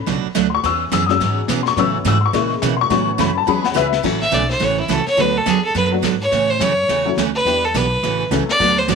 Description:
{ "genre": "country, western swing", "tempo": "211 BPM", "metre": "4/4", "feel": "swing 61% on 8ths", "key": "A major", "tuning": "A4 = 441 Hz", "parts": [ { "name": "honky-tonk upright piano", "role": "accompaniment", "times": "0.0-8.8 s", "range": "E3 to E6", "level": "-19 LUFS", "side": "left 11 dB", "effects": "none" }, { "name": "upright bass", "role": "bass", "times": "0.0-8.9 s", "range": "A1 to B2", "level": "-23 LUFS", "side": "right 1 dB", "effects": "none" }, { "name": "picked steel-string acoustic guitar", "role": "accompaniment", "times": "0.1-8.9 s", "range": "B2 to A4", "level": "-22 LUFS", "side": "right 14 dB", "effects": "none" }, { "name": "vintage brush drum kit", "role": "drums", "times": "0.1-8.9 s", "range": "brushed snare drum, crash cymbal, hi-hat, kick drum, snare drum", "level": "-27 LUFS", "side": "left 8 dB", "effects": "none" }, { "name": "clear fiddle", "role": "melody", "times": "4.2-8.9 s", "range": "E4 to E5", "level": "-17 LUFS", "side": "equal", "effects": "none" } ], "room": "moderate plate reverb, RT60 1.3 s, small room ambience", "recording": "1960s-style stereo with parts hard left and right", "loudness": "-15 LUFS", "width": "side -5 dB against mid", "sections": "0.0-4.0 A section; 4.0-8.9 A section", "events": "honky-tonk piano solo 0.0-4.0; drum fill 3.5-4.0, 8.3; fiddle solo 4.0-8.9", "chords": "0.0 Bm7; 0.6 E6; 1.8 A6; 2.3 F#7; 2.9 A6; 3.5 E6; 4.0 A6; 5.2 D6; 6.3 A6; 7.5 Em7; 8.0 A6" }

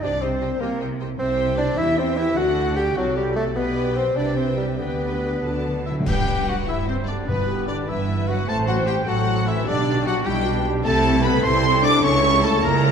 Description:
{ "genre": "classical, dramatic, fast romantic movement for symphony orchestra", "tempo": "100 BPM (dotted quarters)", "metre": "6/8", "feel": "rubato", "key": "G major", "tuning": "A4 = 440 Hz", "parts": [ { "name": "warm symphonic violin section", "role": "melody", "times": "0.0-12.9 s", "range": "F#4 to D6", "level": "-30 LUFS", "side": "left 5 dB", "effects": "none" }, { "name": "hollow small flute group", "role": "second line", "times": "0.0-12.9 s", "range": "F#4 to D6", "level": "-32 LUFS", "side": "right 1 dB", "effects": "none" }, { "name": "warm clarinet", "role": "second line", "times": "0.0-12.9 s", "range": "B3 to G5", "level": "-30 LUFS", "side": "left 2 dB", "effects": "none" }, { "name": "warm symphonic violin section", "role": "second line", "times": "0.0-12.9 s", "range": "B3 to A5", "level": "-34 LUFS", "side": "left 3 dB", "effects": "none" }, { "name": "dark studio viola section", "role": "accompaniment", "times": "0.0-12.9 s", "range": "E4 to C5", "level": "-30 LUFS", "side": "right 1 dB", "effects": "none" }, { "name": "warm bassoon", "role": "accompaniment", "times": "0.0-5.8 s", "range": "F#3 to G4", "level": "-25 LUFS", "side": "right 1 dB", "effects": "none" }, { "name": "mellow French horn section", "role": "sustained chords", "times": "0.0-12.9 s", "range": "B2 to G4", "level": "-28 LUFS", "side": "left 5 dB", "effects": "none" }, { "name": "rich symphonic double bass section", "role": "bass", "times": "0.0-12.9 s", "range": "G1 to E2", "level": "-27 LUFS", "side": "right 3 dB", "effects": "none" }, { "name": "warm symphonic cello section", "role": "bass", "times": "0.0-12.9 s", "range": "G2 to E3", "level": "-27 LUFS", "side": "right 2 dB", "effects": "none" }, { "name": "cymbal swell, clash cymbals and concert bass drum", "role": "percussion", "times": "3.6-6.8 s", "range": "none", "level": "-30 LUFS", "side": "left 1 dB", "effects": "none" }, { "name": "timpani", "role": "percussion", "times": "5.5-7.8 s", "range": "G2 to D3", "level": "-30 LUFS", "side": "equal", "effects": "none" }, { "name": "warm oboe", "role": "second line", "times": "5.9-12.9 s", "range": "B4 to D6", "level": "-31 LUFS", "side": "right 1 dB", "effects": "none" }, { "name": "warm trumpet section", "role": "stabs", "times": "5.9-12.9 s", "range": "B4 to D6", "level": "-28 LUFS", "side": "right 3 dB", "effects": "none" }, { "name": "clear trombone section", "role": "sustained chords", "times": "6.1-12.9 s", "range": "E3 to E4", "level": "-31 LUFS", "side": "right 2 dB", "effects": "none" } ], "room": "wet scoring stage reverb, RT60 1.6 s", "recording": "dark, warm production", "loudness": "-19 LUFS", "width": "side -7 dB against mid", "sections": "0.0-6.1 A section; 6.1-12.9 B section", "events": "timpani fill 5.4-6.1; band accent 6.1-6.5", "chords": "0.0 Cm; 1.2 C; 2.4 D; 3.6 G/B; 4.2 Cmaj7; 4.8 G/D; 5.4 D; 6.1 G; 7.3 Em/G; 8.5 Am; 9.7 G/B; 10.8 Am7/C; 12.0 C#dim7" }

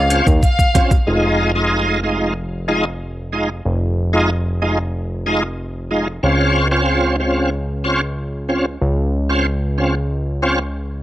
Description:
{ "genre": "dancehall", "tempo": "93 BPM", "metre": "4/4", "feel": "straight", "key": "F minor", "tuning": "A4 = 444 Hz", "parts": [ { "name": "warm symphonic violin section", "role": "melody", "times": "0.0-0.9 s", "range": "F5", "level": "-22 LUFS", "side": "equal", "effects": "cassette tape, tape echo" }, { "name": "fat analog bass", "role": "bass", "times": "0.0-11.0 s", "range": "F1 to Eb2", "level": "-20 LUFS", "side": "equal", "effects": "none" }, { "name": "bright tonewheel organ", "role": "accompaniment", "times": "0.1-10.6 s", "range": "Ab3 to F4", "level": "-18 LUFS", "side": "equal", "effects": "chorus vibrato, slow rotary speaker" }, { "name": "afro-pop drum kit", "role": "drums", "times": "0.1-1.1 s", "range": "hi-hat, kick drum, shaker", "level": "-14 LUFS", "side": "equal", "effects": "cassette tape" }, { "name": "bongos", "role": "percussion", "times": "0.8-1.1 s", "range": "none", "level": "-26 LUFS", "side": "right 4 dB", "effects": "none" } ], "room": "light reverb", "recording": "home recording on cassette", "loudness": "-15 LUFS", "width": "side -14 dB against mid", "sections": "0.0-1.1 A section; 1.1-11.0 B section", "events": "drum fill 0.4-1.1", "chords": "0.0 Dbmaj7; 1.1 Fm7; 6.2 Dbmaj7" }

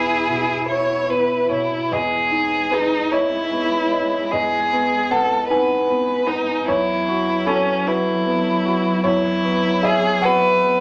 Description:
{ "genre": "neoclassical piano and strings", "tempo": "51 BPM (dotted quarters)", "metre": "6/8", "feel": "rubato", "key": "unclear", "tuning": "A4 = 442 Hz", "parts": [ { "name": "rich violin", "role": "melody", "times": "0.0-10.8 s", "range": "C#4 to C#5", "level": "-21 LUFS", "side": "equal", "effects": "none" }, { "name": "rich cello", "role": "second line", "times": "0.0-10.8 s", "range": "F#3 to E4", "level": "-30 LUFS", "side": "equal", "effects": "none" }, { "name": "clear upright piano", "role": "accompaniment", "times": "0.0-10.8 s", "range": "E2 to G#5", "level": "-24 LUFS", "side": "equal", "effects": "none" } ], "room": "wet large studio reverb, RT60 1.0 s", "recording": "none", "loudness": "-19 LUFS", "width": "mono", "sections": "0.0-1.9 A section; 1.9-10.8 B section", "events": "none", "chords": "0.0 E; 1.9 G#m/E; 6.7 Eadd9" }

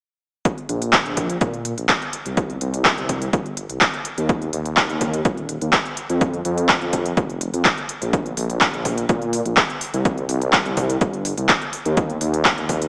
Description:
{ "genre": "progressive house", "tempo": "125 BPM", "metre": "4/4", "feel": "straight", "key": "C minor", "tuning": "A4 = 440 Hz", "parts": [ { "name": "big-room dance drum kit", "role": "drums", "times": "0.5-12.9 s", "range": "handclaps, hi-hat", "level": "-22 LUFS", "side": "equal", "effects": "overdrive" }, { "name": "electronic kick drum", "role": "drums", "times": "0.5-12.8 s", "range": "none", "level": "-25 LUFS", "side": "equal", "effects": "overdrive" }, { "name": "dark detuned saw bass", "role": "bass", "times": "0.7-12.9 s", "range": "Eb1 to Bb2", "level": "-26 LUFS", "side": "equal", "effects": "sidechain pumping" } ], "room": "light reverb", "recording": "small speaker sound", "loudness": "-21 LUFS", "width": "mono", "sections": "0.5-12.9 A section", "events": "none", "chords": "none" }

